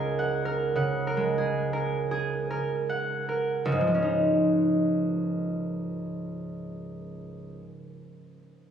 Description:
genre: classical, solo harp piece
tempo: 37-55 BPM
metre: 4/4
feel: rubato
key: Db major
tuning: A4 = 439 Hz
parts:
  - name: concert harp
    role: solo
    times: 0.0-7.6 s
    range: Db2 to Gb5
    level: -26 LUFS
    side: right 1 dB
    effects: none
room: wet church reverb, RT60 3.6 s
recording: recorded on a phone in the room, studio reverb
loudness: -25 LUFS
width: side -8 dB against mid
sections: 0.0-3.6 A section; 3.6-8.7 B section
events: slowing down 0.0-3.6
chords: 0.0 Gbmaj9/Db; 3.6 Dbadd9

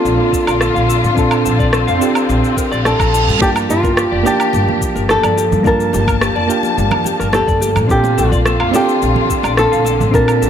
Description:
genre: sunset chillout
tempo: 107 BPM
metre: 4/4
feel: straight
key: Bb major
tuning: A4 = 440 Hz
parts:
  - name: flamenco guitar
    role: melody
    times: 0.0-10.5 s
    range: F4 to Bb4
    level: -17 LUFS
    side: right 1 dB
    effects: tape echo
  - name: soft electric-piano-like synth keys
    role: accompaniment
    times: 0.0-10.5 s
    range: Bb3 to A5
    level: -19 LUFS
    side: right 1 dB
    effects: chorus, auto-pan, ping-pong delay
  - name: warm studio string section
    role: sustained chords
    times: 0.0-10.5 s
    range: D3 to A5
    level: -21 LUFS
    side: left 3 dB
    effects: none
  - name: upright bass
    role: bass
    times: 0.1-10.5 s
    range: F1 to Bb2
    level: -18 LUFS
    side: equal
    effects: none
  - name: electronic shaker, woodblock and rim click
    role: drums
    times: 0.1-10.5 s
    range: none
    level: -21 LUFS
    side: right 1 dB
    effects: small room ambience
  - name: mellow electric guitar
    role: arpeggios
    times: 0.3-10.5 s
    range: G4 to Bb5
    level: -24 LUFS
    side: left 3 dB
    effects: lush chorus, ping-pong delay
  - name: electronic kick drum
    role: drums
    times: 0.3-10.3 s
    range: none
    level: -19 LUFS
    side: equal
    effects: small room ambience
  - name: reverse cymbal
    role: sound effects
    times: 2.6-3.4 s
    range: none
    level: -22 LUFS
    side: right 6 dB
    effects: none
  - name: congas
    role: percussion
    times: 3.6-10.3 s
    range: none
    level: -27 LUFS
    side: right 2 dB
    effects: none
room: moderate scoring stage reverb, RT60 2.0 s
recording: none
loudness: -12 LUFS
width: side -8 dB against mid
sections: 0.0-10.5 A section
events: reverse cymbal 2.6-3.4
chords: 0.0 Bbmaj7; 3.4 Gm9; 7.9 Bbmaj7

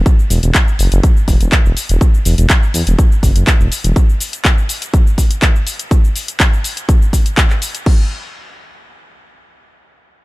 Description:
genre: progressive house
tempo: 123 BPM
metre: 4/4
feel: straight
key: unclear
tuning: A4 = 440 Hz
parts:
  - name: dark detuned saw bass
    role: bass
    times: 0.0-3.9 s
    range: E1 to E2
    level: -13 LUFS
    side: equal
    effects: sidechain pumping
  - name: electronic kick drum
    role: drums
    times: 0.1-8.0 s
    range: none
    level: -11 LUFS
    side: equal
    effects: none
  - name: house drum kit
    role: drums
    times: 0.1-8.0 s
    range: crash cymbal, handclaps, hi-hat, shaker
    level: -19 LUFS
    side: left 1 dB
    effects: none
room: little or no reverb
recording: none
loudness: -11 LUFS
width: side -20 dB against mid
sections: 0.0-7.9 A section; 7.9-10.2 B section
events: drop 0.0-7.9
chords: none

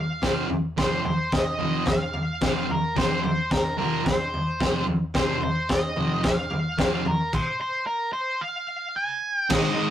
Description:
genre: garage rock duo or trio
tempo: 110 BPM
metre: 4/4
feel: straight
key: F minor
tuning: A4 = 439 Hz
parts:
  - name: octave-fuzz lead guitar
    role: melody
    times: 0.0-9.9 s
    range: Bb4 to Ab5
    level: -27 LUFS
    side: right 1 dB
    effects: distortion
  - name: thick fuzz guitar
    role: riff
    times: 0.2-9.9 s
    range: F2 to Ab3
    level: -27 LUFS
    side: right 1 dB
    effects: distortion
  - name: crunchy breakbeat drum kit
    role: drums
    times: 0.2-9.6 s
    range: crash cymbal, kick drum, snare drum, toms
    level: -24 LUFS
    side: left 1 dB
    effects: none
room: light reverb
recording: rough rehearsal-room recording, tube saturation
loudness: -22 LUFS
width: side -10 dB against mid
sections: 0.0-9.5 A section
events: stop 7.3-9.5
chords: 0.0 F5

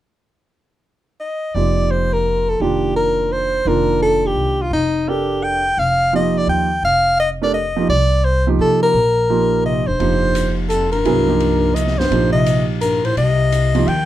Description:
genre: modal jazz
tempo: 170 BPM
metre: 3/4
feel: swing 65% on 8ths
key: F mixolydian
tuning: A4 = 440 Hz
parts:
  - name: bright soprano saxophone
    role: melody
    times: 1.2-14.1 s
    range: Eb4 to G5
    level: -17 LUFS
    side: left 1 dB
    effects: none
  - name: upright bass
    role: bass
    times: 1.5-14.1 s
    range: E1 to C3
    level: -21 LUFS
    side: left 1 dB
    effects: none
  - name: clear upright piano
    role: accompaniment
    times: 1.6-13.9 s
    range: Eb3 to Bb4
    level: -20 LUFS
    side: right 6 dB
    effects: none
  - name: breathy bass clarinet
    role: second line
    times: 9.6-14.1 s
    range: F2 to Eb3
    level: -21 LUFS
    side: left 3 dB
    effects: none
  - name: open jazz drum kit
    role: drums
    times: 10.0-14.0 s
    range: hi-hat, ride cymbal, snare drum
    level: -29 LUFS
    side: left 3 dB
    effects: none
room: moderate studio ambience, RT60 0.5 s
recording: none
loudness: -14 LUFS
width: side -13 dB against mid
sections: 0.5-1.5 A section; 1.5-10.0 B section; 10.0-14.1 C section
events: none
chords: 0.5 N.C.; 1.5 F9sus4

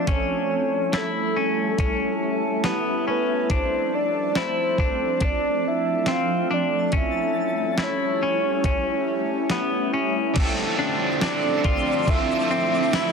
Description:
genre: dream pop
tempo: 70 BPM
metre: 4/4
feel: straight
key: unclear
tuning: A4 = 440 Hz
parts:
  - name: soft octave-layered synth lead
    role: melody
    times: 0.0-13.1 s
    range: A4 to F5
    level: -25 LUFS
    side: equal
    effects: chorus, tape echo
  - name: shimmering ambient pad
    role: sustained chords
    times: 0.0-13.1 s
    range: F3 to A4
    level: -26 LUFS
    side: right 1 dB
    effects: chorus, built-in reverb
  - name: clean electric guitar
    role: arpeggios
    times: 0.0-13.1 s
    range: B3 to F4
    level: -27 LUFS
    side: left 4 dB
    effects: wide subtle chorus, tape echo
  - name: twinkling granular texture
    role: texture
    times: 0.0-0.5, 6.8-13.1 s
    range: A5 to E6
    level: -37 LUFS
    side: equal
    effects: built-in reverb, tape echo
  - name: crisp 8-bit digital drum machine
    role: drums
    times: 0.1-13.1 s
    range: crash cymbal, hi-hat, kick drum, ride cymbal, snare drum, tambourine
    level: -25 LUFS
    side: equal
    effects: none
  - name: overdriven electric guitar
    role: accompaniment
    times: 10.3-13.1 s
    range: D3 to A4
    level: -26 LUFS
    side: right 3 dB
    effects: harmonic tremolo, analog chorus
room: moderate lush hall reverb, RT60 2.6 s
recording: dense, heavily limited modern master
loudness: -20 LUFS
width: side -5 dB against mid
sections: 0.0-10.4 A section; 10.4-13.1 B section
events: none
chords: 0.1 A7; 3.5 Dm7; 6.9 A7; 10.4 Dm7

